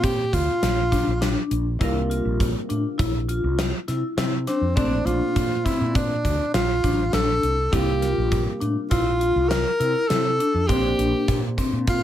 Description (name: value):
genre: progressive instrumental, band music in an uneven meter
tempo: 101 BPM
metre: 5/4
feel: straight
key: C mixolydian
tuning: A4 = 440 Hz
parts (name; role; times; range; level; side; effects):
- clear tenor saxophone; melody; 0.0-12.0 s; C4 to Bb4; -23 LUFS; equal; none
- vintage hollow-body jazz guitar; accompaniment; 0.0-12.0 s; Bb2 to F4; -31 LUFS; right 1 dB; double-tracked left and right
- vibraphone with medium hard mallets; arpeggios; 0.0-11.9 s; C4 to F4; -27 LUFS; left 4 dB; digital delay
- woody fretless electric bass; bass; 0.0-12.0 s; A1 to C3; -25 LUFS; right 1 dB; none
- gated 80s drum kit; drums; 0.0-12.0 s; hi-hat, kick drum, snare drum; -25 LUFS; equal; none
room: light reverb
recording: none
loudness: -20 LUFS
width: side -11 dB against mid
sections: 0.0-12.0 A section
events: none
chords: 0.0 Bbmaj9; 1.8 C7sus4; 4.8 Bbmaj9; 7.7 C7sus4; 10.7 Bbadd9